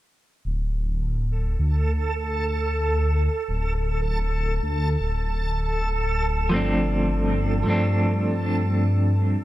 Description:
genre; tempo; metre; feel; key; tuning
trip hop; 79 BPM; 4/4; swing 59% on 16ths; D minor; A4 = 443 Hz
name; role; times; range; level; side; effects
backwards swelling texture; texture; 1.3-9.4 s; A4; -28 LUFS; right 2 dB; built-in reverb
dark detuned saw bass; bass; 0.5-9.4 s; D1 to G2; -23 LUFS; equal; none
clean electric guitar; accompaniment; 6.5-9.4 s; F3 to D4; -23 LUFS; equal; tremolo, tape echo
room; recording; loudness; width
light reverb; echo-heavy mix; -21 LUFS; side -15 dB against mid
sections
0.4-9.4 A section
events
none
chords
0.4 D5; 6.5 G7sus4

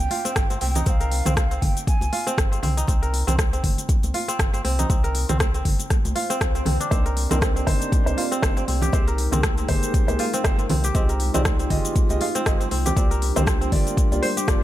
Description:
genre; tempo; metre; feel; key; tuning
afro house; 119 BPM; 4/4; swing 57% on 16ths; C minor; A4 = 439 Hz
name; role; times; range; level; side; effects
breathy hollow bansuri; melody; 0.0-2.3 s; F5 to Ab5; -31 LUFS; right 3 dB; ping-pong delay
kora; arpeggios; 0.0-14.6 s; C4 to C5; -28 LUFS; equal; sidechain pumping, ping-pong delay
round analog bass; bass; 0.0-14.6 s; G1 to C2; -25 LUFS; equal; sidechain pumping
afro-pop drum kit; drums; 0.0-14.6 s; hi-hat, rim click, shaker, toms; -27 LUFS; left 1 dB; none
congas; percussion; 0.0-14.5 s; none; -32 LUFS; right 2 dB; none
electronic kick drum; drums; 0.4-14.6 s; none; -21 LUFS; equal; none
swell; sound effects; 6.1-6.9 s; none; -34 LUFS; left 4 dB; none
dark analog pad; sustained chords; 6.9-14.6 s; G3 to D5; -31 LUFS; equal; lush chorus, sidechain pumping
felt-muted upright piano; stabs; 6.9-14.6 s; Ab3 to Eb5; -28 LUFS; right 1 dB; sidechain pumping, ping-pong delay
room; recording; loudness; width
little or no reverb; none; -19 LUFS; side -14 dB against mid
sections
0.0-14.6 A section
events
swell 6.1-6.9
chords
0.0 Cm7; 8.9 Abmaj9; 10.9 Fm9; 13.0 Gm7

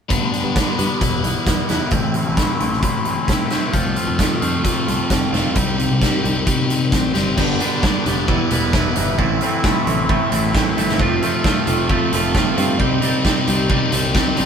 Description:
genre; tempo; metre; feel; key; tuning
indie rock; 132 BPM; 4/4; straight; G mixolydian; A4 = 438 Hz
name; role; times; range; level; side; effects
crunchy overdriven guitar; riff; 0.1-14.5 s; G2 to G4; -19 LUFS; left 2 dB; phaser
picked electric bass; bass; 0.1-14.5 s; E1 to G2; -24 LUFS; equal; none
big rock drum kit; drums; 0.1-14.5 s; crash cymbal, hi-hat, kick drum, snare drum; -20 LUFS; right 1 dB; none
crunchy overdriven guitar; riff; 7.4-14.5 s; E2 to G4; -22 LUFS; right 6 dB; none
room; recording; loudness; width
moderate stone room reverb, RT60 1.2 s; band playing live in one room; -16 LUFS; side -7 dB against mid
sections
0.1-7.4 A section; 7.4-14.5 B section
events
none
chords
0.1 G; 1.0 Em; 1.9 Am; 3.7 F; 5.6 Cm; 7.4 G; 8.3 Em; 9.2 Am; 11.0 F; 12.8 Cm

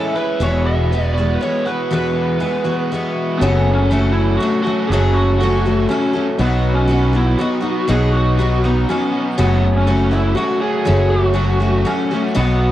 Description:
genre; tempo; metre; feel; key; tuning
folk rock and heartland rock; 120 BPM; 3/4; straight; unclear; A4 = 440 Hz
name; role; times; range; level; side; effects
lead guitar through a small cranked amp; melody; 0.0-12.7 s; B3 to E5; -21 LUFS; equal; overdrive
picked twelve-string acoustic guitar; accompaniment; 0.0-12.7 s; E2 to F#4; -19 LUFS; left 2 dB; cassette tape
overdriven electric guitar; riff; 0.0-12.7 s; E2 to A4; -23 LUFS; right 2 dB; cassette tape
fingered electric bass; bass; 0.4-12.7 s; E1 to B1; -16 LUFS; equal; none
room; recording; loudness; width
light reverb, digital ambience; home recording on cassette; -14 LUFS; side -13 dB against mid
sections
0.0-3.4 A section; 3.4-12.7 B section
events
none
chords
0.4 Eadd9; 3.4 F#m; 6.4 B; 9.4 F#m

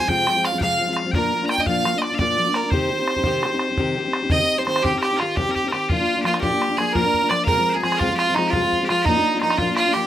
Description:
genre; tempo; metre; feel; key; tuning
celtic folk, Celtic slip jig; 114 BPM (dotted quarters); 9/8; straight; C minor; A4 = 440 Hz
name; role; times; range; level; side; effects
bright fiddle; melody; 0.0-10.1 s; Eb4 to Ab5; -21 LUFS; right 3 dB; none
loud bright bagpipes; second line; 0.0-10.1 s; Eb4 to Bb5; -26 LUFS; left 4 dB; none
fingerpicked steel-string acoustic guitar; accompaniment; 0.0-10.1 s; F2 to G4; -24 LUFS; left 3 dB; none
bodhran; percussion; 0.0-10.0 s; none; -26 LUFS; right 1 dB; none
room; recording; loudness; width
moderate small room reverb, RT60 0.5 s; rough home demo mix; -18 LUFS; side -11 dB against mid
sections
0.0-4.3 A section; 4.3-10.1 B section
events
none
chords
0.0 Fm; 1.1 Bb; 2.7 Cm; 5.9 Bb; 7.5 Fm; 9.1 Bb

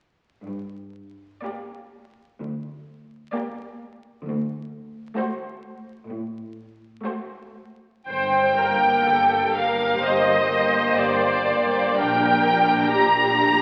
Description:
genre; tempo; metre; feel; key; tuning
classical, slow romantic movement for string orchestra; 62 BPM; 4/4; uneven beats, rubato; G minor; A4 = 445 Hz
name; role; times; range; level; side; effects
clear studio cello section; bass; 0.4-13.6 s; D2 to Bb2; -35 LUFS; equal; none
rich studio violin section; melody; 1.4-13.6 s; C5 to Bb5; -23 LUFS; equal; none
rich studio violin section; second line; 1.4-13.6 s; Bb3 to G4; -29 LUFS; equal; none
rich studio viola section; accompaniment; 1.4-13.6 s; A3 to C5; -28 LUFS; equal; none
clear studio double bass section; bass; 8.1-13.6 s; G1 to Bb1; -36 LUFS; equal; none
room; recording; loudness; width
wet scoring stage reverb, RT60 1.6 s; very old 78 rpm record, vinyl crackle; -21 LUFS; mono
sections
0.4-8.1 A section; 8.1-13.6 B section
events
none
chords
0.4 Gm; 4.3 D7; 8.1 Gm; 12.0 Gm/Bb

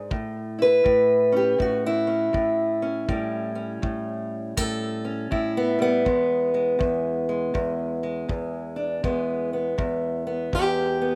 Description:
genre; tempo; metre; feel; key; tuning
acoustic country blues, solo or duo; 81 BPM; 4/4; swing 64% on 8ths; unclear; A4 = 439 Hz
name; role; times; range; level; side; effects
fingerpicked acoustic archtop guitar; melody; 0.0-11.2 s; E2 to B4; -24 LUFS; equal; slapback echo
kick drum; drums; 0.1-10.8 s; none; -31 LUFS; equal; none
room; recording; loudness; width
little or no reverb; recorded outdoors, with no room sound; -24 LUFS; mono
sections
0.0-11.2 A section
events
none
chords
0.1 A7; 6.1 E

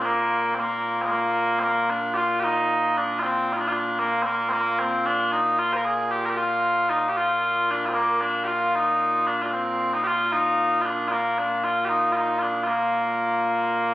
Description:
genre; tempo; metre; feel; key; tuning
scottish traditional, Scottish pipe music; 76 BPM (dotted quarters); 6/8; straight; Bb major; A4 = 440 Hz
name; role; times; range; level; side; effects
mellow small bagpipes; solo; 0.0-13.9 s; Bb2 to C5; -21 LUFS; equal; none
room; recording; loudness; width
moderate huge ambient reverb, RT60 7.5 s; recorded on a phone in the room, studio reverb, compression; -21 LUFS; side -16 dB against mid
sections
0.0-1.6 A section; 1.6-13.9 B section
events
none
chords
none

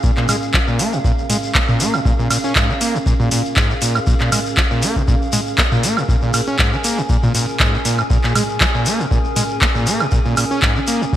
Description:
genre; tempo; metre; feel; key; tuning
acid house; 119 BPM; 4/4; swing 54% on 16ths; Bb minor pentatonic; A4 = 440 Hz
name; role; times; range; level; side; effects
warbly tape-like pad; sustained chords; 0.0-11.2 s; Db4 to Ab5; -24 LUFS; right 1 dB; chorus, built-in reverb, sidechain pumping
overdriven acid bass; riff; 0.0-11.2 s; Ab2 to Db4; -20 LUFS; equal; distortion, analog chorus, digital delay
electronic kick drum; drums; 0.0-11.2 s; none; -18 LUFS; equal; none
shekere; percussion; 0.0-11.2 s; none; -27 LUFS; left 4 dB; none
booming analog drum machine; drums; 0.2-11.0 s; handclaps, hi-hat, toms, woodblock; -19 LUFS; right 1 dB; gated reverb
room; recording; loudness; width
light reverb; bright 1980s-style digital production; -14 LUFS; side -12 dB against mid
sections
0.0-11.2 A section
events
none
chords
0.0 Bbm7

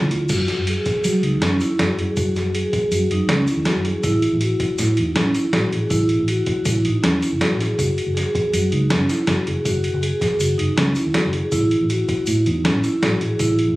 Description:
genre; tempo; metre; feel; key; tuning
progressive instrumental, band music in an uneven meter; 160 BPM; 5/4; straight; F# dorian; A4 = 441 Hz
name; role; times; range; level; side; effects
vibraphone with soft mallets; arpeggios; 0.0-13.7 s; C#4 to G#4; -21 LUFS; equal; ping-pong delay
vintage muted fingered electric bass; bass; 0.0-13.8 s; F#1 to F#3; -22 LUFS; equal; none
boom bap sampler-style drum kit; drums; 0.1-13.7 s; crash cymbal, hi-hat, kick drum, snare drum; -23 LUFS; equal; none
tube shaker; percussion; 0.3-13.6 s; none; -34 LUFS; left 2 dB; none
room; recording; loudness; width
light reverb; recorded on a phone in the room, studio reverb, compression; -17 LUFS; side -18 dB against mid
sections
0.3-13.8 A section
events
none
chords
0.3 F#5; 4.0 A5; 7.8 F#5; 11.5 A5

